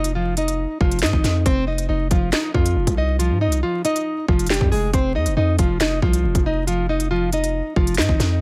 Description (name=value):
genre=hip hop, drill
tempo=138 BPM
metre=4/4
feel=half-time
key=F minor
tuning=A4 = 441 Hz
part: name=nylon-string guitar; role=melody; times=0.0-8.4 s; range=F3 to Eb5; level=-24 LUFS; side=equal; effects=low-pass filter, digital delay
part: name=long sustained 808-style bass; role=bass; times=0.0-8.4 s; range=F1 to Ab2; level=-24 LUFS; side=equal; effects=none
part: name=drill drum kit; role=drums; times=0.0-8.3 s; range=handclaps, hi-hat, kick drum, snare drum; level=-23 LUFS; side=equal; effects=none
room=little or no reverb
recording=vinyl crackle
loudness=-20 LUFS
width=mono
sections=0.0-8.4 A section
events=none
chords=none